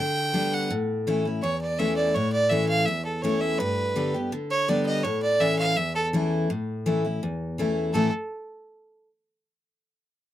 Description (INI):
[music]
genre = bluegrass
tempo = 166 BPM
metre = 4/4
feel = straight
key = A mixolydian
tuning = A4 = 439 Hz
[part]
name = clear fiddle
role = melody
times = 0.0-8.1 s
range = A4 to G5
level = -25 LUFS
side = right 2 dB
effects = none
[part]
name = picked steel-string acoustic guitar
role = accompaniment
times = 0.0-8.1 s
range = E2 to G4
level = -25 LUFS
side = left 2 dB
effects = none
[sound]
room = light reverb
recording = dry, close 1970s-style studio recording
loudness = -23 LUFS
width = side -12 dB against mid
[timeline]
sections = 0.0-6.5 A section; 6.5-7.9 B section; 7.9-9.4 C section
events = none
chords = 0.0 G; 0.7 A; 3.6 G; 5.0 A